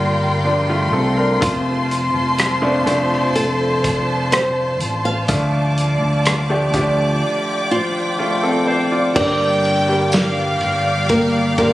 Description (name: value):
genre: pop ballad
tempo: 62 BPM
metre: 4/4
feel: straight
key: G minor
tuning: A4 = 436 Hz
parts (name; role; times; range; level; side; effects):
- bright upright piano; accompaniment; 0.0-11.7 s; G2 to D5; -20 LUFS; left 1 dB; none
- clear studio string section; sustained chords; 0.0-11.7 s; F4 to D6; -22 LUFS; equal; none
- fingered electric bass; bass; 0.0-11.7 s; F1 to D2; -22 LUFS; equal; none
- flamenco guitar; melody; 1.4-11.7 s; F3 to F5; -21 LUFS; equal; none
- loose indie drum kit; drums; 1.4-11.7 s; crash cymbal, hi-hat, kick drum, ride cymbal, rim click, snare drum; -22 LUFS; equal; none
- clear studio violin section; second line; 9.2-11.7 s; F5 to G5; -22 LUFS; left 1 dB; digital delay
- tambourine; percussion; 10.1-10.3 s; none; -29 LUFS; right 2 dB; none
room: light reverb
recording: recorded on a phone in the room, studio reverb, compression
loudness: -15 LUFS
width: side -16 dB against mid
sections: 0.0-9.2 A section; 9.2-11.7 B section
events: none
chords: 0.0 Gm7; 1.4 F; 5.3 Dm; 9.2 Gm